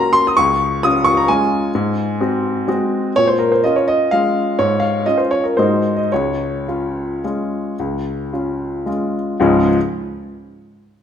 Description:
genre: classical, piano waltz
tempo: 104-136 BPM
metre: 3/4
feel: rubato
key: Db major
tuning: A4 = 440 Hz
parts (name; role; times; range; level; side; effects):
- clear upright piano; solo; 0.0-9.8 s; Db2 to Eb6; -15 LUFS; left 1 dB; none
room: wet recital hall reverb, RT60 1.6 s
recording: minimal, uncompressed stereo recording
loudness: -15 LUFS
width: side -8 dB against mid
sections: 0.0-9.4 A section; 9.4-10.9 B section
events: none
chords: 0.4 Db; 1.7 Ab7; 3.2 Bbm7; 4.6 Db/Ab; 5.6 Ab7; 6.1 Db

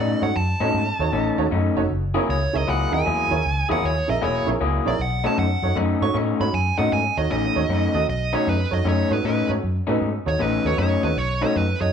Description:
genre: blues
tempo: 155 BPM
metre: 4/4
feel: swing 65% on 8ths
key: B mixolydian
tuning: A4 = 440 Hz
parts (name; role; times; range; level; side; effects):
- dark smooth lead guitar; melody; 0.0-11.9 s; B4 to C#6; -26 LUFS; right 2 dB; overdrive
- electric guitar through a small old amp; riff; 0.0-11.6 s; B2 to G#4; -24 LUFS; left 4 dB; none
- vintage muted fingered electric bass; bass; 0.0-11.9 s; E1 to A2; -24 LUFS; equal; none
- warm upright piano; accompaniment; 0.2-11.9 s; D#4 to E5; -28 LUFS; right 5 dB; none
room: light reverb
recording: band playing live in one room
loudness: -19 LUFS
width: side -7 dB against mid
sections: 0.0-8.1 A section; 8.1-11.9 A section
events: lead electric guitar solo 0.0-8.1, 8.1-11.9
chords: 0.0 B9; 1.9 F#9; 5.0 B9

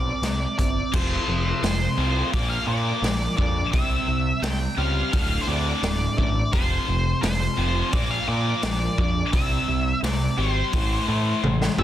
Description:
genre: quiet-loud alternative rock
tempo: 86 BPM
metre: 4/4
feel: straight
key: unclear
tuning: A4 = 436 Hz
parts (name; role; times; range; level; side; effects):
- octave-fuzz lead guitar; melody; 0.0-11.8 s; C5 to G5; -28 LUFS; left 1 dB; distortion, slapback echo
- electric guitar through a small old amp; arpeggios; 0.0-11.8 s; D2 to G4; -32 LUFS; right 3 dB; ensemble chorus, slapback echo
- growling picked electric bass; bass; 0.0-11.8 s; D1 to Bb2; -26 LUFS; equal; overdrive
- raw garage drum kit; drums; 0.2-11.8 s; crash cymbal, hi-hat, kick drum, snare drum, toms; -26 LUFS; equal; none
- high-gain distorted guitar; riff; 0.9-11.8 s; D2 to C4; -28 LUFS; left 1 dB; distortion
room: small room ambience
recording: dense, heavily limited modern master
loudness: -21 LUFS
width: side -12 dB against mid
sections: 0.9-11.8 A section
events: drum fill 11.4-11.8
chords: 0.2 C5; 0.9 F5; 2.3 Bb; 3.7 C; 5.1 D5; 6.5 F5; 7.9 Bb; 9.3 C; 10.7 Am

